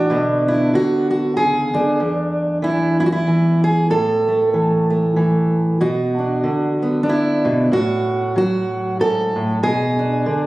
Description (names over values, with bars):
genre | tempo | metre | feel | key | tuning
folk, solo fingerstyle acoustic guitar | 94 BPM | 3/4 | swing 58% on 8ths | unclear | A4 = 445 Hz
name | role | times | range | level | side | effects
fingerpicked steel-string acoustic guitar | solo | 0.0-10.5 s | E2 to A4 | -16 LUFS | right 1 dB | none
room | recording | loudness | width
moderate large studio reverb, RT60 1.2 s | recorded on a phone in the room, studio reverb, compression | -16 LUFS | side -18 dB against mid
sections
0.0-5.8 A section; 5.8-10.5 B section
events
none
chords
0.1 Bm; 2.0 N.C.; 3.9 A5; 5.8 Bm; 7.7 F#m/A; 9.6 Bm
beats
| 0.10 0.73 1.37 | 2.00 2.64 3.27 | 3.91 4.54 5.18 | 5.81 6.45 7.08 | 7.72 8.35 8.99 | 9.62 10.26